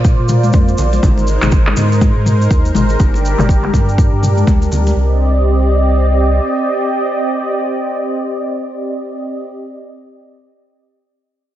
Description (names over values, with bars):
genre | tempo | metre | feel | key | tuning
afro house | 122 BPM | 4/4 | swing 59% on 16ths | C minor | A4 = 441 Hz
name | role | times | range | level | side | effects
warm analog pad | sustained chords | 0.0-9.4 s | G3 to Eb5 | -18 LUFS | right 1 dB | chorus, sidechain pumping
warm sub bass | bass | 0.0-6.4 s | G1 to Bb2 | -14 LUFS | equal | sidechain pumping
electronic kick drum | drums | 0.0-4.6 s | none | -13 LUFS | equal | none
congas | percussion | 0.0-4.9 s | none | -20 LUFS | left 3 dB | none
egg shaker | percussion | 0.0-4.9 s | none | -31 LUFS | left 2 dB | none
deep house drum kit | drums | 0.3-4.3 s | handclaps, toms | -20 LUFS | left 1 dB | low-pass filter on hats, low-pass filter on snare, low-pass filter on toms
room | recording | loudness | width
moderate lush hall reverb, RT60 1.8 s | dreamy mix soaked in reverb, nothing above 7.6 kHz | -12 LUFS | side -12 dB against mid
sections
0.0-5.0 A section; 5.0-8.9 B section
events
filter sweep on drum 0.0-5.0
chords
0.0 Bb; 1.0 Ab; 3.0 Gm; 5.0 Cm